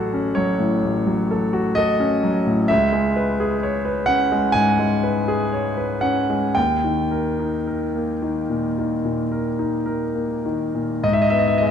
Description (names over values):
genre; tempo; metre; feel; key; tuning
classical, romantic nocturne for solo piano; 48-66 BPM; 4/4; rubato; unclear; A4 = 441 Hz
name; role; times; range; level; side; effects
clear grand piano; solo; 0.0-11.7 s; A1 to G#5; -18 LUFS; equal; none
room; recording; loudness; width
moderate recital hall reverb, RT60 1.5 s; dark, warm production; -18 LUFS; side -8 dB against mid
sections
0.0-11.0 A section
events
none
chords
0.0 F#m/A; 2.7 C#m7; 6.6 D#; 11.0 G#m